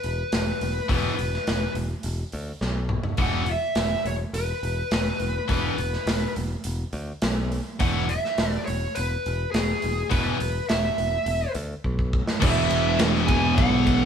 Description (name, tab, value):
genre	hard rock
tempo	104 BPM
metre	4/4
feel	straight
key	E major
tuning	A4 = 440 Hz
part	smooth overdriven lead guitar	melody	0.0-14.1 s	G#4 to G#5	-27 LUFS	equal	none
part	modern bright picked electric bass	bass	0.0-14.1 s	E1 to D2	-28 LUFS	equal	none
part	big rock drum kit	drums	0.0-14.0 s	crash cymbal, hi-hat, kick drum, ride cymbal, snare drum, toms	-27 LUFS	equal	none
part	heavy high-gain guitar	riff	0.9-14.1 s	E2 to E3	-28 LUFS	left 7 dB	distortion
part	sludgy distorted guitar	riff	0.9-14.1 s	E2 to E3	-29 LUFS	right 6 dB	overdrive
part	crunchy overdriven guitar	riff	12.4-14.1 s	E3 to E4	-26 LUFS	right 1 dB	none
room	moderate stone room reverb, RT60 0.9 s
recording	band playing live in one room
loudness	-22 LUFS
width	side -8 dB against mid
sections	0.0-12.4 A section; 12.4-14.1 B section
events	drum fill 2.6-3.2, 11.8-12.4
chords	0.0 E5; 12.4 E